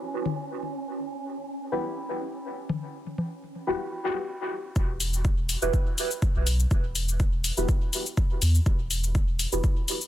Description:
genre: dub techno.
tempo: 123 BPM.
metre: 4/4.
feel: swing 53% on 16ths.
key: E dorian.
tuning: A4 = 440 Hz.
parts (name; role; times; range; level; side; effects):
wind-like tuned noise texture; texture; 0.0-3.8 s; C#4; -37 LUFS; right 3 dB; built-in reverb, sidechain pumping.
electronic toms and congas; percussion; 0.3-3.3 s; none; -31 LUFS; left 4 dB; sidechain pumping on toms, sidechain pumping on perc, dub echo.
deep mellow chord stab; stabs; 1.7-9.6 s; E4 to B4; -31 LUFS; equal; chorus, phaser, sidechain pumping, dub echo.
pure sine sub bass; bass; 4.8-9.6 s; E1 to E2; -26 LUFS; equal; sidechain pumping.
electronic cabasa and hi-hat; drums; 4.8-10.1 s; none; -29 LUFS; left 4 dB; overdrive.
electronic kick drum; drums; 4.8-9.7 s; none; -24 LUFS; equal; overdrive.
room: little or no reverb.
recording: dense, heavily limited modern master.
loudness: -25 LUFS.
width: side -13 dB against mid.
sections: 0.0-4.8 A section; 4.8-10.1 B section.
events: filter sweep on synth stab 4.8-10.1.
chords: 0.0 Emadd9.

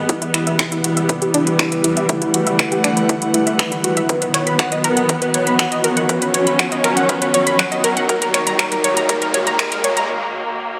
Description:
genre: melodic techno.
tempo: 120 BPM.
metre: 4/4.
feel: straight.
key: unclear.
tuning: A4 = 440 Hz.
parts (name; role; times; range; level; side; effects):
dark symphonic string section; sustained chords; 0.0-10.8 s; D#3 to C#4; -24 LUFS; equal; sidechain pumping.
analog pluck; arpeggios; 0.0-10.1 s; D4 to B5; -23 LUFS; equal; chorus, sidechain pumping, delay.
swelling detuned saw bass; bass; 0.0-10.1 s; D#1 to E2; -38 LUFS; equal; none.
riser; sound effects; 1.0-10.1 s; none; -31 LUFS; equal; none.
airy breathy pad; texture; 0.0-10.1 s; B3 to F#5; -25 LUFS; equal; chorus, sidechain pumping.
electronic kick drum; drums; 0.1-9.7 s; none; -25 LUFS; equal; high-pass filter on kick, studio reverb.
house drum kit; drums; 0.1-10.1 s; finger snaps, hi-hat; -22 LUFS; equal; high-pass filter on hats, studio reverb, high-pass filter on snare.
room: moderate lush hall reverb, RT60 2.4 s.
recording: high-pass filter.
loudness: -17 LUFS.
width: mono.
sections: 0.0-10.8 A section.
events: build-up 0.0-10.8; filter sweep on synth pluck 0.0-10.8; riser 1.0-10.1; break 10.1-10.8.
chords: 0.1 Em; 4.1 B; 8.1 D#m.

